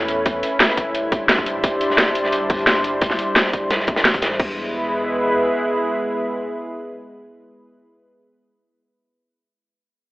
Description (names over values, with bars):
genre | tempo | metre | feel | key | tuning
liquid drum and bass | 174 BPM | 4/4 | straight | E minor | A4 = 440 Hz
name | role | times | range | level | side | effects
lush unison pad | sustained chords | 0.0-7.9 s | G3 to C5 | -21 LUFS | equal | chorus
sub bass with octave | bass | 0.0-5.4 s | D1 to E2 | -40 LUFS | equal | none
crunchy breakbeat drum kit | drums | 0.1-4.4 s | hi-hat, snare drum | -24 LUFS | equal | high-pass filter on hats, studio reverb, high-pass filter on snare, high-pass filter on room
drum and bass drum kit | drums | 0.1-4.5 s | crash cymbal, hi-hat, snare drum | -19 LUFS | equal | overdrive, studio reverb
electronic kick drum | drums | 0.3-4.5 s | none | -21 LUFS | equal | overdrive, studio reverb
room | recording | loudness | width
wet digital room reverb, RT60 1.2 s, small room ambience | telephone sound | -17 LUFS | side -19 dB against mid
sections
0.0-4.4 A section; 4.4-7.2 B section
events
none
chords
0.0 B9sus4; 0.9 D9sus4; 4.4 E